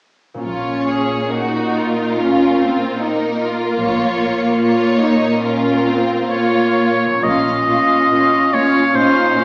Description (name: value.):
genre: classical, slow romantic movement for symphony orchestra.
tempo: 61-75 BPM.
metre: 4/4.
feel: rubato.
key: Bb minor.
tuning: A4 = 440 Hz.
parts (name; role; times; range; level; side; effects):
concert harp; arpeggios; 0.3-9.4 s; Bb2 to F4; -28 LUFS; equal; none.
rich studio violin section; melody; 0.4-9.4 s; Bb4 to F5; -25 LUFS; equal; none.
rich studio violin section; second line; 0.4-9.4 s; Db4 to Ab4; -19 LUFS; equal; none.
warm studio viola section; accompaniment; 0.4-9.4 s; Bb3 to F4; -18 LUFS; equal; none.
rich studio double bass section; bass; 0.4-7.7 s; Bb1; -32 LUFS; equal; none.
rich studio cello section; bass; 0.5-9.4 s; Bb2; -22 LUFS; equal; none.
clear oboe; second line; 6.3-9.4 s; C5 to Eb5; -14 LUFS; equal; none.
room: wet recital hall reverb, RT60 1.3 s.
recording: heard from further back in the room, small speaker sound.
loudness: -13 LUFS.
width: side -32 dB against mid.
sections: 0.4-7.2 A section; 7.2-9.4 B section.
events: none.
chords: 0.4 Bbm.